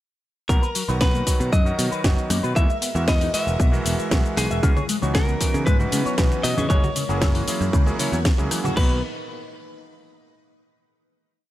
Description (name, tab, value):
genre	nu-disco, nu disco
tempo	116 BPM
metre	4/4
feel	straight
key	B major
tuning	A4 = 444 Hz
part	direct-recorded clean electric guitar	melody	0.5-9.0 s	G#4 to E5	-28 LUFS	left 1 dB	spring reverb, tape echo
part	warm electric grand piano	accompaniment	0.5-9.0 s	D#3 to E5	-29 LUFS	right 2 dB	none
part	string machine, full ensemble	sustained chords	0.5-9.0 s	E3 to A#5	-34 LUFS	left 1 dB	phaser, ensemble chorus, sidechain pumping
part	electric guitar with an envelope filter	riff	0.5-9.0 s	C#3 to E5	-30 LUFS	left 3 dB	wide subtle chorus
part	picked electric bass	bass	0.5-9.0 s	E1 to C#3	-25 LUFS	equal	none
part	electronic kick drum	drums	0.5-8.9 s	none	-20 LUFS	equal	none
part	house drum kit	drums	0.5-8.9 s	crash cymbal, hi-hat, rim click, shaker, snare drum	-28 LUFS	left 1 dB	none
part	congas	percussion	4.6-8.7 s	none	-30 LUFS	right 2 dB	none
room	digital ambience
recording	none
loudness	-18 LUFS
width	side -14 dB against mid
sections	0.5-8.8 drop; 8.8-10.8 final chord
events	drop 0.5-8.8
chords	0.5 Bmaj7; 2.6 Eadd9(#11); 4.6 C#m11; 6.7 F#9; 8.8 Bmaj7